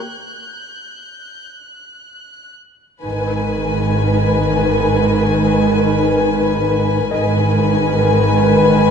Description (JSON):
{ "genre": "cinematic, suspense film score", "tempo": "59 BPM", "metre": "4/4", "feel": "straight", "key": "G# minor from 3.0 s", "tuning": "A4 = 440 Hz", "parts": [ { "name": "warm studio violin section", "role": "second line", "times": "0.0-8.9 s", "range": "A#4 to C#5", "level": "-23 LUFS", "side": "left 2 dB", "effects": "none" }, { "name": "dark symphonic viola section", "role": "accompaniment", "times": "0.0-8.9 s", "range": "D#3 to G4", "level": "-22 LUFS", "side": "right 1 dB", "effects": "none" }, { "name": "warm chamber violin section", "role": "texture", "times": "0.0-2.5 s", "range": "F#6 to G#6", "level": "-32 LUFS", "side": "equal", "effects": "none" }, { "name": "rich chamber violin section", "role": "melody", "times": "3.0-8.9 s", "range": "G#5", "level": "-23 LUFS", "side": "left 5 dB", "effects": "none" }, { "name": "warm French horn section", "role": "sustained chords", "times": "3.0-8.9 s", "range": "D#3 to B4", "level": "-19 LUFS", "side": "left 2 dB", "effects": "none" }, { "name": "rich studio double bass section", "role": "bass", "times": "3.0-8.9 s", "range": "G#1", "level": "-21 LUFS", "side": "right 1 dB", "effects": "none" }, { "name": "warm studio cello section", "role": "bass", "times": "3.0-8.9 s", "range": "G#2", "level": "-19 LUFS", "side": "right 3 dB", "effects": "none" }, { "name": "warm grand piano", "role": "texture", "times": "4.6-8.9 s", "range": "D#5 to G#5", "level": "-32 LUFS", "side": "equal", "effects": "none" } ], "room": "moderate scoring stage reverb, RT60 2.0 s", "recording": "dark, warm production, nothing above 11.0 kHz", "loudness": "-13 LUFS", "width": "side -7 dB against mid", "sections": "0.0-3.0 A section; 3.0-8.9 B section", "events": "break 1.0-3.0", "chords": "0.0 D#7 (rootless); 3.0 G#m" }